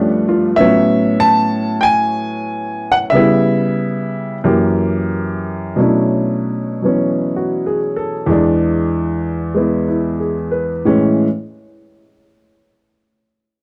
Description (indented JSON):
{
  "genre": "solo jazz",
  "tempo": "94 BPM",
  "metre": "4/4",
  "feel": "swing 69% on 8ths, rubato",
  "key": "A major",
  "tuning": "A4 = 440 Hz",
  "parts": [
    { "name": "clear upright piano", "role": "solo", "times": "0.0-11.3 s", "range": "E2 to A5", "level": "-16 LUFS", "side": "equal", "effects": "none" }
  ],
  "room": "studio reverb",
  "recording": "dry, close 1970s-style studio recording",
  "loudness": "-16 LUFS",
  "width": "mono",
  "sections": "0.0-5.8 A section; 5.8-10.9 B section; 10.9-13.4 C section",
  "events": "none",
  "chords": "0.0 G9; 0.6 A69; 3.1 C#m7b5; 4.4 F#7b9; 5.8 Bm11; 8.3 E7; 10.9 Amaj7"
}